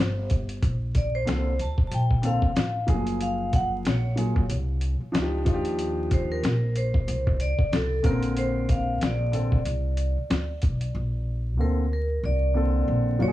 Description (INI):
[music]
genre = hip hop, jazz-hop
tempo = 93 BPM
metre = 4/4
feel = swing 58% on 16ths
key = Bb major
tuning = A4 = 444 Hz
[part]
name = vibraphone with medium hard mallets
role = melody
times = 0.0-13.3 s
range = A4 to A5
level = -31 LUFS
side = equal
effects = analog delay
[part]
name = upright bass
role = bass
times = 0.0-13.3 s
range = Gb1 to Eb2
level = -26 LUFS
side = equal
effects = none
[part]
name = dusty soul sampler-style drum kit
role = drums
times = 0.3-10.9 s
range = hi-hat, kick drum, snare drum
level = -25 LUFS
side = equal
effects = vintage 12-bit sampler grit
[part]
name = dark grand piano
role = accompaniment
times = 1.3-13.3 s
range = Db3 to Bb4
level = -28 LUFS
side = equal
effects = none
[sound]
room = small room ambience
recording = dry, gritty hardware recording, transformer saturation, vinyl crackle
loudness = -23 LUFS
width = side -15 dB against mid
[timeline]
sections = 0.0-10.9 A section; 10.9-13.3 B section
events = none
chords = 0.0 Abmaj7 (rootless); 0.6 Bbmaj9; 2.9 Gbmaj9; 5.5 Ebmaj9; 8.0 Bbadd9; 10.9 Bbmaj9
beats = | 0.62 1.27 1.92 2.56 | 3.21 3.85 4.50 5.14 | 5.79 6.43 7.08 7.72 | 8.37 9.01 9.66 10.30 | 10.95 11.59 12.24 12.88